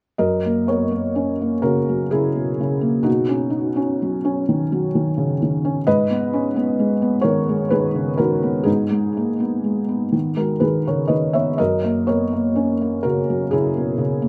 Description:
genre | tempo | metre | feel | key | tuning
neoclassical minimalist piano | 42 BPM (dotted quarters) | 6/8 | rubato | unclear | A4 = 440 Hz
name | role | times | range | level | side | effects
felt-muted upright piano | solo | 0.2-14.3 s | F#2 to E5 | -20 LUFS | equal | tape echo
room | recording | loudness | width
moderate small room ambience, RT60 0.5 s | rough home demo mix | -20 LUFS | mono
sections
0.2-14.3 A section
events
none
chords
0.2 F#; 3.1 Badd9; 5.9 G#m; 11.6 F#

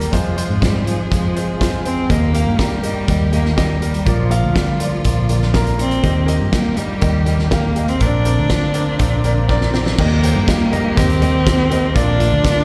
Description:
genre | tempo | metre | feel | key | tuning
piano-driven pop | 122 BPM | 4/4 | straight | Eb major | A4 = 438 Hz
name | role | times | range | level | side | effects
warm cello | melody | 0.0-12.6 s | F3 to D4 | -23 LUFS | equal | slapback echo
warm grand piano | accompaniment | 0.0-12.6 s | Bb2 to F5 | -25 LUFS | equal | slapback echo
warm studio string section | sustained chords | 0.0-12.6 s | D3 to Ab4 | -32 LUFS | equal | none
vintage muted fingered electric bass | bass | 0.0-12.6 s | Bb1 to Ab2 | -20 LUFS | equal | none
loose indie drum kit | drums | 0.0-12.6 s | crash cymbal, hi-hat, kick drum, snare drum, toms | -22 LUFS | equal | none
room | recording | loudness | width
light reverb | live gig heard through the venue's PA, recital hall reverb | -17 LUFS | mono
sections
0.0-10.0 A section; 10.0-12.6 B section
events
drum fill 9.5-10.0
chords
0.1 Fm; 2.1 Eb; 4.1 Bb; 6.0 Eb; 8.0 Bbadd9; 10.0 Eb; 12.0 Bb

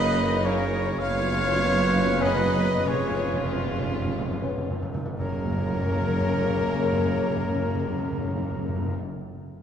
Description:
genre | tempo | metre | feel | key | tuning
classical, slow romantic movement for symphony orchestra | 24-37 BPM (dotted quarters) | 6/8 | rubato | F# major | A4 = 440 Hz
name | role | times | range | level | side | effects
dark chamber violin section | melody | 0.0-9.0 s | A#4 to E#5 | -33 LUFS | left 6 dB | none
clear clarinet | second line | 0.0-9.0 s | A#4 to C#5 | -36 LUFS | left 4 dB | none
hollow concert flute | second line | 0.0-9.0 s | G#4 to A#5 | -35 LUFS | left 2 dB | none
rich chamber violin section | second line | 0.0-9.0 s | A#3 to E#4 | -38 LUFS | left 6 dB | none
warm oboe | second line | 0.0-9.0 s | A#4 to E#5 | -36 LUFS | right 1 dB | none
clear bassoon | accompaniment | 0.0-9.0 s | C#3 | -36 LUFS | right 1 dB | none
rich chamber viola section | accompaniment | 0.0-9.0 s | A#3 to E#4 | -33 LUFS | right 1 dB | none
mellow trumpet | stabs | 0.0-9.0 s | G#4 to C#5 | -31 LUFS | right 2 dB | none
rich chamber double bass section | bass | 0.0-9.0 s | E#1 to F#1 | -32 LUFS | right 3 dB | none
rich studio cello section | bass | 0.0-9.0 s | E#2 to F#2 | -32 LUFS | right 2 dB | none
warm tuba | bass | 0.0-9.0 s | E#1 to F#1 | -34 LUFS | right 2 dB | none
mellow French horn section | sustained chords | 0.4-9.0 s | A#3 to C#4 | -33 LUFS | left 3 dB | none
timpani | percussion | 1.0-9.0 s | F#2 | -30 LUFS | left 1 dB | none
room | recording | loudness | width
wet concert hall reverb, RT60 2.4 s | dark, warm production | -23 LUFS | side -8 dB against mid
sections
0.0-5.2 A section; 5.2-9.5 B section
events
slowing down 0.0-5.2; timpani fill 1.0-5.2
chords
0.0 F#; 1.0 C#7/F#; 5.2 F#

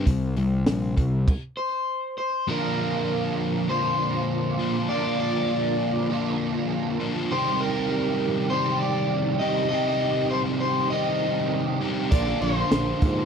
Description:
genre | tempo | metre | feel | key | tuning
indie rock | 100 BPM | 4/4 | straight | unclear | A4 = 440 Hz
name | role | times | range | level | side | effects
sludgy distorted guitar | riff | 0.0-13.3 s | Bb2 to G4 | -27 LUFS | left 5 dB | overdrive
fuzz picked electric bass | bass | 0.0-1.3, 12.1-13.2 s | Bb1 to Ab2 | -26 LUFS | right 1 dB | overdrive
compact cocktail drum kit | drums | 0.1-1.4, 12.1-13.2 s | crash cymbal, hi-hat, kick drum, snare drum | -22 LUFS | equal | none
overdriven semi-hollow guitar | melody | 1.6-13.3 s | Bb4 to Eb5 | -26 LUFS | equal | slapback echo
overdriven electric guitar | riff | 2.5-13.3 s | Bb2 to G4 | -28 LUFS | right 8 dB | ensemble chorus, slapback echo
room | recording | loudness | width
light reverb | dry, close 1970s-style studio recording | -22 LUFS | side -6 dB against mid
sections
0.0-2.5 A section; 2.5-13.3 B section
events
stop 1.3-2.5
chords
0.0 C5; 2.5 Bbadd9; 7.3 Cm; 12.1 Bbadd9

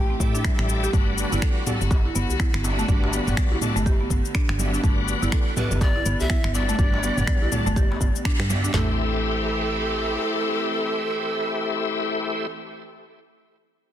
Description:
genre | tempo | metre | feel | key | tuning
afro house | 123 BPM | 4/4 | swing 59% on 16ths | A dorian | A4 = 436 Hz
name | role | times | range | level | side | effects
pan flute | melody | 0.0-0.2, 5.6-12.5 s | A4 to G5 | -30 LUFS | right 1 dB | digital delay
rich chamber string section | sustained chords | 0.0-12.5 s | D3 to G4 | -32 LUFS | equal | sidechain pumping
buzzing marimba with medium mallets | arpeggios | 0.0-9.0 s | G3 to A4 | -30 LUFS | right 1 dB | sidechain pumping, digital delay
woody FM bass | bass | 0.0-10.2 s | G1 to A2 | -26 LUFS | equal | sidechain pumping
bright tonewheel organ | stabs | 0.2-12.5 s | G3 to E5 | -28 LUFS | left 2 dB | chorus vibrato, slow rotary speaker, sidechain pumping, digital delay
afro-pop drum kit | drums | 0.2-8.9 s | handclaps, kick drum, snare drum, toms | -22 LUFS | equal | small room ambience
afro-pop drum kit | drums | 0.2-8.7 s | cabasa, finger snaps, toms | -30 LUFS | left 1 dB | small room ambience, soft clipping on snare
djembe | percussion | 0.7-8.6 s | none | -32 LUFS | left 1 dB | none
congas | percussion | 0.9-8.6 s | none | -34 LUFS | right 5 dB | none
room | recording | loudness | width
small room reverb | dense, heavily limited modern master | -20 LUFS | side -11 dB against mid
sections
0.0-8.7 A section; 8.7-12.6 B section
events
drop 0.0-8.7; band accent 8.3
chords
0.0 Am7; 0.9 Gmaj7; 8.7 Am7

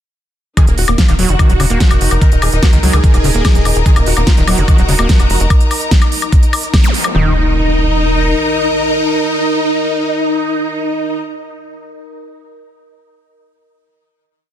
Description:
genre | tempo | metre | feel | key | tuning
psychedelic trance | 146 BPM | 4/4 | straight | Eb minor | A4 = 440 Hz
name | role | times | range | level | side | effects
dense compressed supersaw | melody | 0.6-11.2 s | Bb3 to Bb4 | -18 LUFS | equal | phaser, sidechain pumping, dub echo
evolving wavetable pad | sustained chords | 1.3-11.2 s | Eb4 to Bb4 | -23 LUFS | equal | phaser, built-in reverb, vintage 12-bit sampler grit, sidechain pumping
overdriven acid bass | riff | 0.6-7.3 s | Db3 to Bb3 | -20 LUFS | equal | distortion, auto-pan, sidechain pumping, digital delay
big-room dance drum kit | drums | 0.6-7.1 s | hi-hat, snare drum, woodblock | -18 LUFS | equal | studio reverb
electronic kick drum | drums | 0.6-6.8 s | none | -10 LUFS | equal | studio reverb
warm studio string section | texture | 0.6-11.2 s | Eb4 to Bb5 | -22 LUFS | left 3 dB | sidechain pumping
tight sequencer bass | bass | 0.7-8.3 s | Eb1 to Db2 | -14 LUFS | equal | none
zap and impact | sound effects | 6.8-11.9 s | none | -23 LUFS | equal | none
room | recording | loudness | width
light reverb | dense, heavily limited modern master | -10 LUFS | side -10 dB against mid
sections
0.6-7.1 groove; 7.1-10.4 final chord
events
band accent 6.7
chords
0.6 Eb5

